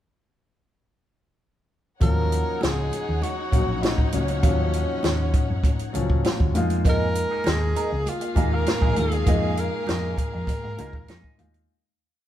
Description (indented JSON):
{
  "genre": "lush 1970s-style soul",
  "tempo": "99 BPM",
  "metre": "4/4",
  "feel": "straight",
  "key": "Eb minor",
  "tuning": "A4 = 441 Hz",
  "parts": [
    { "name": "breathy tenor saxophone", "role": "melody", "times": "2.0-11.4 s", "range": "Db4 to Bb4", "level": "-29 LUFS", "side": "equal", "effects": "none" },
    { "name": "warm studio string section", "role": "second line", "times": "2.0-11.4 s", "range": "Bb3 to Gb5", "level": "-34 LUFS", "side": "left 2 dB", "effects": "none" },
    { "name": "warm baby grand piano", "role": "accompaniment", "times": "2.0-11.7 s", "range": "F3 to Gb4", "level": "-30 LUFS", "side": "left 3 dB", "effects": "none" },
    { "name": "hollow-body short-scale fingered electric bass", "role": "bass", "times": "2.0-11.7 s", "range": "Bb1 to Ab2", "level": "-26 LUFS", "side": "equal", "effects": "none" },
    { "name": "compact cocktail drum kit", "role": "drums", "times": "2.0-11.7 s", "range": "hi-hat, kick drum, snare drum", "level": "-24 LUFS", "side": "equal", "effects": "none" },
    { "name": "congas", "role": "percussion", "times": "2.0-11.7 s", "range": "none", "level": "-37 LUFS", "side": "right 4 dB", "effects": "none" },
    { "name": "electric guitar through a small old amp", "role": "riff", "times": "6.9-11.6 s", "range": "Bb3 to Bb4", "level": "-32 LUFS", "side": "right 4 dB", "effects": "wah" }
  ],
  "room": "moderate large studio reverb, RT60 1.3 s",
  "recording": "band playing live in one room",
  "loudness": "-21 LUFS",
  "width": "side -12 dB against mid",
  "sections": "2.0-11.7 verse",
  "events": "fade-out 9.3-11.7",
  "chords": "2.0 Ebm7; 6.5 Bb7sus4",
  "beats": "| 2.02 2.62 3.23 3.83 | 4.43 5.04 5.64 6.25 | 6.85 7.46 8.06 8.66 | 9.27 9.88 10.48 11.09"
}